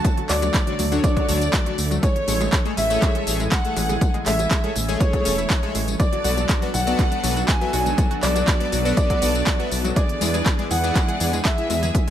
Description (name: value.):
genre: progressive house.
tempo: 121 BPM.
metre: 4/4.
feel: straight.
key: A major.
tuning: A4 = 440 Hz.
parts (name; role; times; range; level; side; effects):
warm grand piano; melody; 0.0-12.1 s; C#5 to A5; -26 LUFS; equal; sidechain pumping, ping-pong delay.
rich chamber violin section; second line; 0.0-12.1 s; C#5 to A5; -33 LUFS; equal; sidechain pumping, ping-pong delay.
lush unison pad; sustained chords; 0.0-12.1 s; D3 to G#5; -30 LUFS; right 1 dB; chorus, sidechain pumping.
analog pluck; arpeggios; 0.0-12.1 s; F#3 to G#4; -31 LUFS; left 1 dB; chorus, sidechain pumping, ping-pong delay.
big-room dance drum kit; drums; 0.0-12.1 s; handclaps, hi-hat, tambourine; -27 LUFS; equal; sidechain pumping on hats, sidechain pumping on perc, sidechain pumping on cymbals.
electronic kick drum; drums; 0.0-12.1 s; none; -20 LUFS; equal; none.
congas and bongos; percussion; 0.2-12.1 s; none; -34 LUFS; left 3 dB; none.
chorused polysynth; stabs; 0.3-11.7 s; D3 to E5; -29 LUFS; left 3 dB; sidechain pumping, ping-pong delay.
dark detuned saw bass; bass; 0.3-11.9 s; E1 to E2; -24 LUFS; equal; sidechain pumping.
room: little or no reverb.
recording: none.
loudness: -18 LUFS.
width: side -10 dB against mid.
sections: 0.0-12.1 A section.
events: none.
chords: 0.0 Dmaj7; 2.0 Amaj7; 6.0 Bm7; 10.0 E7.